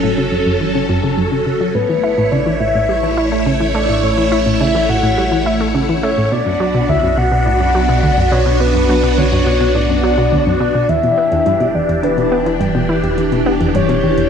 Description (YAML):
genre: ambient, sequencer-driven space music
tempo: 105 BPM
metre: 4/4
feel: straight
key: E dorian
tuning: A4 = 440 Hz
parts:
  - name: phased string machine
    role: sustained chords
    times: 0.0-14.3 s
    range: E3 to C#5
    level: -17 LUFS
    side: equal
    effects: ensemble chorus, phaser
  - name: analog pluck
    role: riff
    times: 0.0-14.3 s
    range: D2 to E4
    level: -18 LUFS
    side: equal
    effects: chorus, ping-pong delay
  - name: warm sub bass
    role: bass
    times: 0.0-14.3 s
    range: E1 to B1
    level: -21 LUFS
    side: equal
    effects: none
  - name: soft octave-layered synth lead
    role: melody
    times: 1.7-14.3 s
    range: B4 to F#5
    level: -18 LUFS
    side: left 2 dB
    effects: chorus, ping-pong delay
  - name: electronic hi-hat and woodblock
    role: percussion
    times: 10.9-14.3 s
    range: none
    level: -41 LUFS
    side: left 6 dB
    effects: ping-pong delay
room: moderate plate reverb, RT60 2.3 s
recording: none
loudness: -12 LUFS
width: side -7 dB against mid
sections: 0.0-10.9 A section; 10.9-14.3 B section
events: fade-in on sub bass 0.0-10.9; filter sweep on synth arpeggio sound 0.0-10.9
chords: 0.0 F#m; 1.7 A; 6.3 Bm; 10.9 Em7